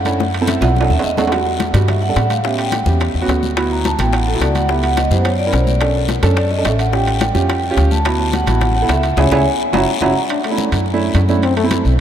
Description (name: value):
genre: Afro-Cuban jazz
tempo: 214 BPM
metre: 4/4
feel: straight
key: unclear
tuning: A4 = 440 Hz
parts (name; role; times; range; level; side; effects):
- vibraphone with medium mallets; melody; 0.0-10.1 s; A4 to A#5; -20 LUFS; equal; none
- upright bass; bass; 0.0-12.0 s; F#1 to A2; -17 LUFS; equal; none
- warm upright piano; accompaniment; 0.1-11.9 s; G3 to A#4; -20 LUFS; right 3 dB; none
- congas; percussion; 0.1-11.9 s; none; -27 LUFS; left 4 dB; none
- guiro; percussion; 0.1-12.0 s; none; -30 LUFS; left 9 dB; none
- timbales; percussion; 0.1-11.8 s; none; -25 LUFS; right 5 dB; none
- bongos; percussion; 0.2-10.1 s; none; -27 LUFS; left 8 dB; none
- warm trombone; second line; 10.3-11.7 s; A3 to D4; -22 LUFS; left 6 dB; none
room: moderate cathedral reverb, RT60 7.0 s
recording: in a vast, echoing space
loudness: -13 LUFS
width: side -9 dB against mid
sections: 0.0-1.3 A section; 1.3-10.3 A section; 10.3-12.0 A section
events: vibraphone solo 0.0-10.3; drum fill 0.2-1.3, 9.6-10.3; band accent 9.2-10.3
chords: 0.2 F#m7b5; 0.8 B7; 1.3 Em9; 2.4 A9; 3.6 D6; 4.7 C#m7b5; 5.2 F#7; 5.8 Bm9; 6.9 Aaug7; 8.1 D69; 9.2 C#m; 9.7 F#7; 10.3 Dmaj9; 11.4 F#m7b5